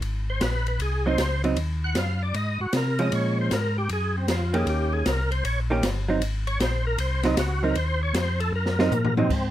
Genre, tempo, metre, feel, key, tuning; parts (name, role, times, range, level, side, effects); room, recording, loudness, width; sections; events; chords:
soul jazz organ trio; 155 BPM; 4/4; swing 66% on 8ths; Ab mixolydian; A4 = 440 Hz
mellow tonewheel organ; bass; 0.0-9.5 s; G1 to C3; -26 LUFS; equal; slow rotary speaker
open jazz drum kit; drums; 0.0-9.4 s; crash cymbal, hi-hat, kick drum, ride cymbal, snare drum, toms; -30 LUFS; left 1 dB
percussive tonewheel organ; melody; 0.3-9.5 s; C4 to Gb5; -29 LUFS; equal; slow rotary speaker, overdrive, chorus vibrato
vintage hollow-body jazz guitar; accompaniment; 1.1-9.3 s; Eb3 to G4; -25 LUFS; right 3 dB
light reverb; rough home demo mix; -22 LUFS; side -12 dB against mid
0.0-9.3 A section
tonewheel organ solo 0.0-9.3; drum fill 8.5-9.3
0.0 Ab7; 3.1 Bbm7; 4.7 Eb7; 6.2 Ab7